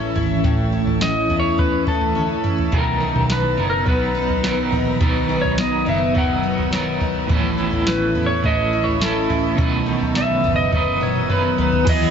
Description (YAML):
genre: dream pop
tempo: 105 BPM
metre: 4/4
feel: straight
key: B major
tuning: A4 = 445 Hz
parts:
  - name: clean lap steel guitar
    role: melody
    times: 0.0-12.1 s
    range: A4 to F#5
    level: -22 LUFS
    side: equal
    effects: digital delay
  - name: ethereal airy pad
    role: sustained chords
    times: 0.0-12.1 s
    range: D#3 to C#4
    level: -25 LUFS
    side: equal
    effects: ensemble chorus, built-in reverb, phaser
  - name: picked twelve-string acoustic guitar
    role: arpeggios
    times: 0.0-12.1 s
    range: A2 to E4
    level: -24 LUFS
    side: left 3 dB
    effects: lush chorus, digital delay
  - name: vintage muted picked electric bass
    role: bass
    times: 0.0-12.1 s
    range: F#1 to E2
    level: -26 LUFS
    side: equal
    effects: none
  - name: soft vintage rhythm box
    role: drums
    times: 0.2-12.0 s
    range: crash cymbal, kick drum, snare drum, tambourine, toms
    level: -23 LUFS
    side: right 1 dB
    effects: none
  - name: electric guitar at the edge of break-up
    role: accompaniment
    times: 2.7-12.1 s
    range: A2 to B4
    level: -24 LUFS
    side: right 4 dB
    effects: tremolo, lush chorus
room: moderate shimmer reverb, RT60 5.8 s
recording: nothing above 7.7 kHz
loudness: -16 LUFS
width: side -7 dB against mid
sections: 0.0-11.9 A section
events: drum fill 2.2-2.7, 10.7-11.9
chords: 0.0 A; 2.7 Bmaj7; 7.3 A; 9.6 B